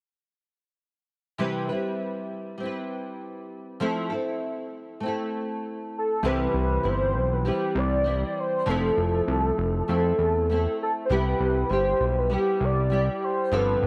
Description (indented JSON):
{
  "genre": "indie pop",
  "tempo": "99 BPM",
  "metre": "4/4",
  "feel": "straight",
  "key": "C major",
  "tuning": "A4 = 438 Hz",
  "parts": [
    { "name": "nylon-string guitar", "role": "accompaniment", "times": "1.4-13.9 s", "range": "G2 to B4", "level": "-31 LUFS", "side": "equal", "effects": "analog chorus, vibrato effect" },
    { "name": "warm velvety synth lead", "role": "melody", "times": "6.0-13.9 s", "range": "G4 to D5", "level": "-28 LUFS", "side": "equal", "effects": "subtle chorus, tape echo" },
    { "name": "fat analog bass", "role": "bass", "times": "6.2-13.9 s", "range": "F1 to F2", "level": "-28 LUFS", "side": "equal", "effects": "none" }
  ],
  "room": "light reverb, small room ambience",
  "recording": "none",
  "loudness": "-26 LUFS",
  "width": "mono",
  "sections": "1.4-6.2 A section; 6.2-13.9 B section",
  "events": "none",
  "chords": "1.4 Cmaj7; 3.8 Fmaj7; 6.2 Cmaj7; 8.7 Fmaj7; 11.1 Cmaj7",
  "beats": "| 1.39 2.00 2.60 3.21 | 3.82 4.42 5.03 5.64 | 6.24 6.85 7.46 8.06 | 8.67 9.28 9.88 10.49 | 11.10 11.70 12.31 12.92 | 13.52"
}